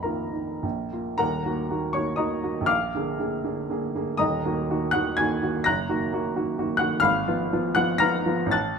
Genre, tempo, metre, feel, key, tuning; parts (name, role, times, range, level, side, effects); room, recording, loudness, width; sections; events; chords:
classical, romantic character piece for solo piano; 101-131 BPM; 3/4; rubato; Eb minor; A4 = 439 Hz
warm upright piano; solo; 0.0-8.8 s; Eb1 to Bb6; -23 LUFS; equal
light reverb; close, detailed microphones; -23 LUFS; side -6 dB against mid
0.0-1.2 A section; 1.2-8.8 B section
0.0 Bbsus4; 0.6 Bb5; 1.2 Ebm; 2.7 Bb7; 4.2 Ebm; 5.6 Ebm/Gb; 7.0 Fdim/Ab